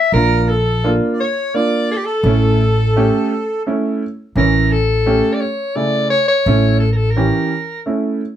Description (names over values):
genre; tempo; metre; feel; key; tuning
klezmer; 86 BPM; 3/4; straight; A phrygian dominant; A4 = 440 Hz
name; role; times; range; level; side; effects
bright soprano saxophone; melody; 0.0-7.8 s; G4 to E5; -18 LUFS; left 2 dB; none
accordion; second line; 0.0-3.6 s; A4 to E5; -23 LUFS; right 4 dB; none
clear upright piano; accompaniment; 0.1-8.2 s; C#3 to G4; -18 LUFS; right 2 dB; none
upright bass; bass; 0.1-7.3 s; A1 to Bb1; -16 LUFS; equal; none
room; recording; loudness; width
light reverb; close, detailed microphones; -14 LUFS; side -10 dB against mid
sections
0.0-4.4 A section; 4.4-8.4 A section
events
none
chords
0.1 Bb; 2.3 A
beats
| 0.13 0.84 1.55 | 2.25 2.96 3.66 | 4.36 5.06 5.76 | 6.46 7.15 7.85